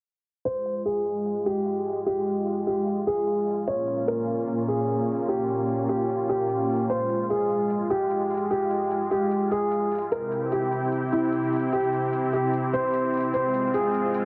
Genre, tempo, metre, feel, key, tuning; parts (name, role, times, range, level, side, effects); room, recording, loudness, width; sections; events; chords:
heavy wobble dubstep; 149 BPM; 4/4; half-time; F harmonic minor; A4 = 435 Hz
dark concert grand piano; melody; 0.5-14.2 s; E4 to Db5; -28 LUFS; equal; digital delay
supersaw pad; sustained chords; 0.5-14.2 s; Bb2 to G5; -30 LUFS; equal; low-pass filter
electronic hi-hat; drums; 0.5-14.2 s; -52 LUFS; equal; low-pass filter on hats, studio ambience
light reverb, small room ambience; heavily compressed radio sound, multiband compression, low-pass filter; -26 LUFS; mono
0.5-14.2 A section
filter sweep on drum 0.5-14.2; filter sweep on supersaw synth 0.5-14.2; filter sweep 0.5-14.2
0.5 Fm; 3.7 Bbm; 6.9 Fm/Ab; 10.1 C; 13.3 Fm